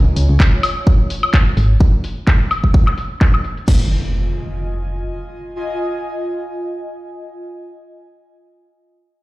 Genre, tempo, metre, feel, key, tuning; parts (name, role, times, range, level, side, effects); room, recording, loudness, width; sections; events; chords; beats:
piano house; 128 BPM; 4/4; swing 55% on 16ths; F minor; A4 = 442 Hz
solid FM bass; bass; 0.0-5.0 s; F1 to Db2; -16 LUFS; equal; sidechain pumping
airy breathy pad; texture; 0.0-7.5 s; F4 to Ab5; -27 LUFS; equal; chorus, sidechain pumping
house drum kit; drums; 0.2-3.8 s; crash cymbal, handclaps, hi-hat, woodblock; -21 LUFS; left 1 dB; low-pass filter on hats, low-pass filter on snare, low-pass filter on perc, low-pass filter on cymbals, low-pass filter on room
electronic kick drum; drums; 0.4-3.8 s; -12 LUFS; equal
impact; sound effects; 3.7-7.4 s; -24 LUFS; right 1 dB
light reverb; played on a big sound system in a bare room, stone room reverb; -14 LUFS; side -19 dB against mid
0.0-3.7 A section; 3.7-7.4 B section
fade-out on analog synth pad 0.0-1.8; filter sweep on drum 0.0-3.7
0.0 Db; 1.8 N.C.; 3.7 Fm7
0.40 0.87 1.33 | 1.80 2.27 2.74 3.21 | 3.68 4.15 4.62 5.08 | 5.55 6.02 6.49 6.96